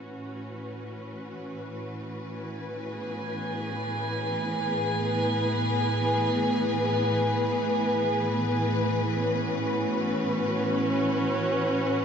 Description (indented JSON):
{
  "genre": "ambient",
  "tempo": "free time",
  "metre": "none",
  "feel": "none",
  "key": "A major",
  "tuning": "A4 = 437 Hz",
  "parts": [
    { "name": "warm studio string section", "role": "sustained chords", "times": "0.0-12.0 s", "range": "A2 to B4", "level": "-26 LUFS", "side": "equal", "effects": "none" },
    { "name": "drifting glass-harmonics texture", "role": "texture", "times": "2.9-8.8 s", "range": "G#5", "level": "-33 LUFS", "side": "right 2 dB", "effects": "chorus, built-in reverb, shimmer reverb" }
  ],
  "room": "wet huge ambient reverb, RT60 8.2 s",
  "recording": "nothing above 7.9 kHz",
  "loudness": "-25 LUFS",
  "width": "side -7 dB against mid",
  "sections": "0.0-8.8 A section; 8.8-12.0 B section",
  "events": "fade-in on string section 0.0-8.8",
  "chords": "0.0 A69"
}